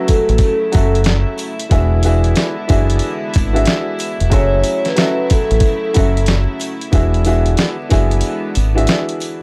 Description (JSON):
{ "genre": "hip hop, boom-bap hip-hop", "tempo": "92 BPM", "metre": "4/4", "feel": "swing 63% on 16ths", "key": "unclear", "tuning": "A4 = 440 Hz", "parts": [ { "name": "vibraphone with soft mallets", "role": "melody", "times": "0.0-6.2 s", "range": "A4 to C#5", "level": "-22 LUFS", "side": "equal", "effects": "high-pass filter, low-pass filter, tape echo" }, { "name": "warm upright piano", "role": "accompaniment", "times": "0.0-9.4 s", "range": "E3 to E5", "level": "-22 LUFS", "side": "equal", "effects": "cassette tape, high-pass filter, low-pass filter" }, { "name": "warm studio string section", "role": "sustained chords", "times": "0.0-9.4 s", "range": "C#3 to E4", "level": "-28 LUFS", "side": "equal", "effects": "high-pass filter, low-pass filter" }, { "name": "dusty soul sampler-style drum kit", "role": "drums", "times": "0.1-9.4 s", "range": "hi-hat, kick drum, snare drum", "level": "-18 LUFS", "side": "equal", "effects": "none" }, { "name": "sleigh bells", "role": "percussion", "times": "0.1-9.4 s", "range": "none", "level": "-39 LUFS", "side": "equal", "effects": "none" }, { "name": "deep dub fingered electric bass", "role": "bass", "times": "0.3-8.9 s", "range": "E1 to A1", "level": "-17 LUFS", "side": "equal", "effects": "none" } ], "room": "little or no reverb", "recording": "dry, gritty hardware recording, vinyl crackle", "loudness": "-15 LUFS", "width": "mono", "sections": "0.0-9.4 A section", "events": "break 8.2-9.4", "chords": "0.0 F#m7; 1.7 E7; 4.3 F#m7; 6.9 E7" }